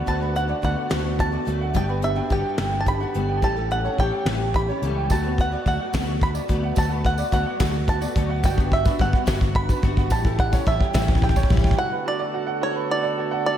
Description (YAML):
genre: indie folk with a building arrangement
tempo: 72 BPM (dotted quarters)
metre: 6/8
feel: straight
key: D major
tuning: A4 = 441 Hz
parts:
  - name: bluegrass banjo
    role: melody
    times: 0.0-13.6 s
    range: C#5 to B5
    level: -27 LUFS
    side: right 2 dB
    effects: tape echo
  - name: fingerpicked steel-string acoustic guitar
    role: accompaniment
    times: 0.0-5.1 s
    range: D2 to G4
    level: -31 LUFS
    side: left 3 dB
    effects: none
  - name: picked steel-string acoustic guitar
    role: accompaniment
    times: 0.0-11.8 s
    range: A2 to A4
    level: -30 LUFS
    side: left 6 dB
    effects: ensemble chorus
  - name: warm upright piano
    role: arpeggios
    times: 0.0-13.6 s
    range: F#4 to G5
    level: -28 LUFS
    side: right 5 dB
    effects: wide subtle chorus, tape echo
  - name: fingered electric bass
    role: bass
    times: 0.1-11.7 s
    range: G1 to D2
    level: -26 LUFS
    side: equal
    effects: none
  - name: soft brush drum kit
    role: drums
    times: 0.1-11.8 s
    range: hi-hat, kick drum, snare drum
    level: -22 LUFS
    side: equal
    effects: none
  - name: tambourine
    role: percussion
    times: 5.1-11.5 s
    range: none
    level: -44 LUFS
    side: right 6 dB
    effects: none
  - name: warm brass ensemble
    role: sustained chords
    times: 11.8-13.6 s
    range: D3 to A4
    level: -30 LUFS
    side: left 1 dB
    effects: none
room: moderate lush hall reverb, RT60 1.9 s, small room ambience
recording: dreamy mix soaked in reverb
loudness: -20 LUFS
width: side -10 dB against mid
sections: 0.0-11.8 A section; 11.8-13.6 B section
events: build-up 0.0-11.8; drum fill 0.0-11.8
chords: 0.0 D6; 1.7 Gmaj7; 3.4 A7; 5.1 D6; 8.4 Gmaj7; 10.1 A7; 11.8 D6